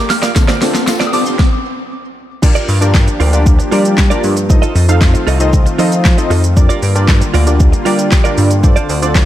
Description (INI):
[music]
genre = dance-pop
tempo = 116 BPM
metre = 4/4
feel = straight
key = G minor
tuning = A4 = 441 Hz
[part]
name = soft synth bell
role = melody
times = 0.0-1.6 s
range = D6 to F6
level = -22 LUFS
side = right 2 dB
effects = chorus, phaser, ping-pong delay
[part]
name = warm analog pad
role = sustained chords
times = 0.0-9.3 s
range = D3 to D5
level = -22 LUFS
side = left 1 dB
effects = chorus, sidechain pumping
[part]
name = wide unison pluck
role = arpeggios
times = 0.0-1.3 s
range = D3 to C6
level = -25 LUFS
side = left 1 dB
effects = sidechain pumping, ping-pong delay
[part]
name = riser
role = sound effects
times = 0.0-1.4 s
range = none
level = -21 LUFS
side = equal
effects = none
[part]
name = direct-recorded clean electric guitar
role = riff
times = 0.1-9.2 s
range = F4 to Eb5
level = -22 LUFS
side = right 7 dB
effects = analog chorus
[part]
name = deep house drum kit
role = drums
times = 0.1-9.3 s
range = crash cymbal, handclaps, hi-hat, kick drum, shaker, snare drum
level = -12 LUFS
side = equal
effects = none
[part]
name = tambourine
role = percussion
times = 0.1-1.3 s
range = none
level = -31 LUFS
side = left 6 dB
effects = none
[part]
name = warm analog keys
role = accompaniment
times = 0.4-9.3 s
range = C4 to F5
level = -18 LUFS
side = equal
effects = chorus, sidechain pumping
[part]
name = chorused synth bass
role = bass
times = 2.7-9.3 s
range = C2 to G3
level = -13 LUFS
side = equal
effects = sidechain pumping
[sound]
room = little or no reverb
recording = none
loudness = -9 LUFS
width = side -13 dB against mid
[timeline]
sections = 0.0-2.4 A section; 2.4-9.3 B section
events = build-up 0.0-2.4; drum fill 0.0-1.4; riser 0.0-2.4; stop 1.4-2.4; drop 2.4-9.3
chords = 0.4 Dm7; 2.4 Gm7; 4.5 F7; 6.6 Gm7; 8.6 Dm7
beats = | 0.36 0.88 1.39 1.91 | 2.43 2.95 3.46 3.98 | 4.50 5.01 5.53 6.05 | 6.57 7.08 7.60 8.12 | 8.63 9.15